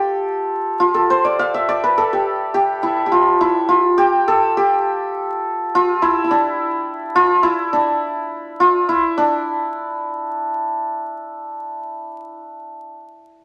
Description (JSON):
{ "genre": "indian classical", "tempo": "104 BPM", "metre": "4/4", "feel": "straight", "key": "D raga bhimpalasi", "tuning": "A4 = 440 Hz", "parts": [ { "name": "santur", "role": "solo", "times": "0.0-12.9 s", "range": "D4 to F5", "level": "-18 LUFS", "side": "equal", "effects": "none" } ], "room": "moderate studio reverb, RT60 0.8 s", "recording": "vinyl crackle", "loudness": "-18 LUFS", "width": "mono", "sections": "0.0-9.2 A section; 9.2-11.4 B section", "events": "speeding up 0.0-11.4", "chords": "none" }